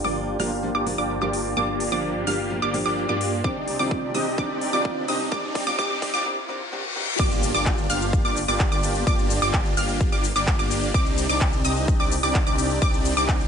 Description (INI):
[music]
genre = EDM, festival progressive house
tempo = 128 BPM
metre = 4/4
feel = straight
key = G minor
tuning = A4 = 444 Hz
[part]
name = fingerpicked steel-string acoustic guitar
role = accompaniment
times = 0.0-7.1 s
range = Eb3 to D5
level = -30 LUFS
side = equal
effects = sidechain pumping, digital delay
[part]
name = wide unison pluck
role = arpeggios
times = 0.0-13.5 s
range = D6 to F6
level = -27 LUFS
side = right 1 dB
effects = sidechain pumping, digital delay
[part]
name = supersaw chords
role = riff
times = 0.0-13.5 s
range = Bb3 to F5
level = -26 LUFS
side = equal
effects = sidechain pumping, low-pass filter, digital delay
[part]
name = wide detuned saw bass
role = bass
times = 0.0-13.5 s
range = G1 to G2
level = -30 LUFS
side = equal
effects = chorus, sidechain pumping
[part]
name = big-room dance drum kit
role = drums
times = 0.0-13.5 s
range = crash cymbal, handclaps, hi-hat, shaker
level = -30 LUFS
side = left 2 dB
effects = overdrive
[part]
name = riser, reverse cymbal and impact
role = sound effects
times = 2.6-9.1 s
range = none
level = -33 LUFS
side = left 2 dB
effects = none
[part]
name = electronic kick drum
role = drums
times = 3.4-13.4 s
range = none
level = -23 LUFS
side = equal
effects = overdrive
[sound]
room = light reverb, digital ambience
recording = high-pass filter, nothing above 10.5 kHz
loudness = -21 LUFS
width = side -7 dB against mid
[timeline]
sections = 0.0-7.2 A section; 7.2-13.5 B section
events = build-up 0.0-7.2; filter sweep on supersaw synth 0.0-7.2; filter sweep 0.0-7.2; drum fill 3.4-6.3; break 6.3-7.2; reverse cymbal 6.3-7.2; drop 7.2-13.5; impact 7.2-9.1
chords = 0.0 Gm7; 3.4 Cmadd9; 7.2 Gm7; 10.9 Cmadd9